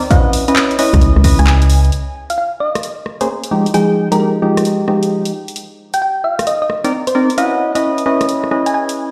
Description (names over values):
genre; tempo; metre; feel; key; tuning
UK garage, two-step garage; 132 BPM; 4/4; swing 66% on 16ths; unclear; A4 = 435 Hz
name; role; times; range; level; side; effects
percussive organ stab; stabs; 0.0-9.1 s; F3 to G5; -17 LUFS; equal; chorus, phaser, tape echo
thumb-piano-like synth pluck; melody; 0.1-8.8 s; Ab4 to Ab5; -21 LUFS; equal; chorus, cassette tape, tape echo
electronic kick drum; drums; 0.1-1.4 s; none; -15 LUFS; equal; none
house drum kit; drums; 0.1-9.0 s; handclaps, hi-hat, rim click; -24 LUFS; equal; none
organ-like FM bass; bass; 0.9-1.9 s; Db2; -12 LUFS; equal; none
room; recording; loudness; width
moderate digital room reverb, RT60 1.0 s; played on a big sound system in a bare room, stone room reverb; -15 LUFS; mono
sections
0.0-1.9 A section; 1.9-9.1 B section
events
kick drops out 1.5-1.9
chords
0.1 Dbm9; 1.9 Bbm9; 3.5 Fm9; 5.3 Cm9; 7.4 Dbm9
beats
| 0.10 0.56 1.01 1.47 | 1.92 2.38 2.83 3.29 | 3.74 4.20 4.65 5.11 | 5.56 6.01 6.47 6.92 | 7.38 7.83 8.29 8.74